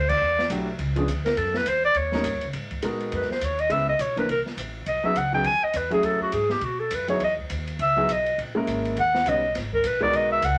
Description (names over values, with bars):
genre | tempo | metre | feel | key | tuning
jazz, small-group swing and bop | 205 BPM | 4/4 | swing 60% on 8ths | G# minor | A4 = 440 Hz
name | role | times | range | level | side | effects
warm clarinet | melody | 0.0-10.6 s | F#4 to G#5 | -25 LUFS | equal | none
upright bass | bass | 0.0-10.6 s | G#1 to B2 | -34 LUFS | equal | none
open jazz drum kit | drums | 0.1-10.5 s | crash cymbal, hi-hat, kick drum, ride cymbal, snare drum | -37 LUFS | equal | none
warm grand piano | accompaniment | 0.5-10.4 s | E3 to C#5 | -30 LUFS | equal | none
room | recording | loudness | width
moderate studio reverb, RT60 0.6 s | none | -24 LUFS | mono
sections
0.0-2.5 A section; 2.5-10.6 B section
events
band accent 0.1; clarinet solo 2.5-10.6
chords
0.2 Em11; 0.8 C#7b9; 1.4 D13 (rootless); 2.0 D#7; 2.5 G#m9; 3.7 C#m7; 4.3 Am; 4.9 B69; 6.0 F#m9; 6.6 B; 7.2 Emaj7(no3); 8.4 A#m7b5; 9.0 D#7b13; 9.6 G#m9